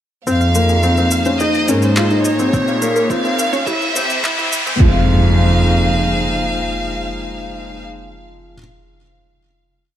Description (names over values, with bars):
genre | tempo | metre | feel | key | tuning
piano and strings electronica | 106 BPM | 4/4 | straight | F minor | A4 = 436 Hz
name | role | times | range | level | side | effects
warm chamber violin section | melody | 0.3-7.8 s | Bb4 to F5 | -21 LUFS | equal | digital delay
muted string quartet | sustained chords | 0.3-7.8 s | Bb3 to Db5 | -24 LUFS | left 1 dB | sidechain pumping, low-pass filter
felt-muted upright piano | riff | 0.3-8.6 s | F3 to F4 | -20 LUFS | left 1 dB | digital delay
warm chamber cello section | bass | 0.3-6.5 s | F2 to E3 | -18 LUFS | equal | sidechain pumping
electronic shaker and handclaps | drums | 0.3-4.8 s | none | -23 LUFS | equal | studio reverb
riser and impact | sound effects | 2.5-8.6 s | none | -23 LUFS | equal | none
analog pluck | arpeggios | 0.4-5.1 s | Eb4 to F5 | -26 LUFS | right 3 dB | chorus, sidechain pumping, digital delay
electronic kick drum | drums | 2.5-4.9 s | none | -14 LUFS | equal | studio reverb
room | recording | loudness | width
light reverb, small room reverb | high-pass filter | -13 LUFS | side -11 dB against mid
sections
0.3-4.8 build; 4.8-7.1 final chord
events
build-up 0.3-4.8; filter sweep on string quartet 0.3-4.8; filter sweep 0.3-4.8; riser 2.5-4.8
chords
0.3 Fm; 1.4 Ab; 2.5 Bbm; 3.7 C; 4.8 Fm